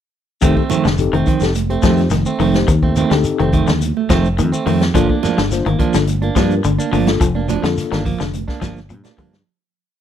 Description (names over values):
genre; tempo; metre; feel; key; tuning
afrobeat; 106 BPM; 4/4; straight; F mixolydian; A4 = 440 Hz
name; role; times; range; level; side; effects
mellow tine electric piano; accompaniment; 0.4-8.0 s; Bb3 to C5; -21 LUFS; left 8 dB; fast stereo tremolo
electric guitar at the edge of break-up; arpeggios; 0.4-9.4 s; Bb2 to F3; -21 LUFS; left 7 dB; none
clean electric guitar; stabs; 0.4-9.4 s; Eb3 to D4; -20 LUFS; right 6 dB; slapback echo
fingered electric bass; bass; 0.4-9.4 s; F1 to G2; -19 LUFS; equal; none
vintage drum kit; drums; 0.4-9.5 s; hi-hat, kick drum, snare drum; -20 LUFS; equal; none
shekere; percussion; 0.4-9.3 s; none; -26 LUFS; left 2 dB; none
congas; percussion; 0.6-9.5 s; none; -25 LUFS; right 17 dB; none
room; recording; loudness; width
little or no reverb; dry, close 1970s-style studio recording; -14 LUFS; side -10 dB against mid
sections
0.4-9.5 groove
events
fade-out 7.2-9.5; drum fill 8.9-9.5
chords
0.4 F7; 4.9 Gm7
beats
| 0.42 0.98 1.55 2.12 | 2.68 3.25 3.81 4.38 | 4.95 5.51 6.08 6.64 | 7.21 7.77 8.34 8.90